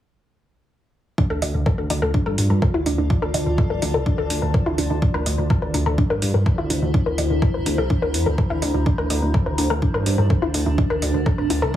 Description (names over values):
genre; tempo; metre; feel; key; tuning
melodic techno; 125 BPM; 4/4; straight; D minor; A4 = 442 Hz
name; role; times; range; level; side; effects
analog pluck; arpeggios; 1.2-11.8 s; D4 to D5; -25 LUFS; left 2 dB; chorus, sidechain pumping, tape echo
electronic kick drum; drums; 1.2-11.8 s; none; -21 LUFS; equal; overdrive
granular cloud pad; texture; 2.0-11.8 s; D4 to Bb5; -28 LUFS; equal; built-in reverb, sidechain pumping
fat analog bass; bass; 1.3-11.7 s; D1 to G2; -22 LUFS; equal; sidechain pumping
electronic hi-hat; drums; 1.4-11.6 s; none; -28 LUFS; right 1 dB; overdrive
room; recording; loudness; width
light reverb; heavily compressed radio sound, small room ambience; -18 LUFS; side -12 dB against mid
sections
1.2-11.8 A section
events
none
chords
1.2 Dm; 5.0 C7/D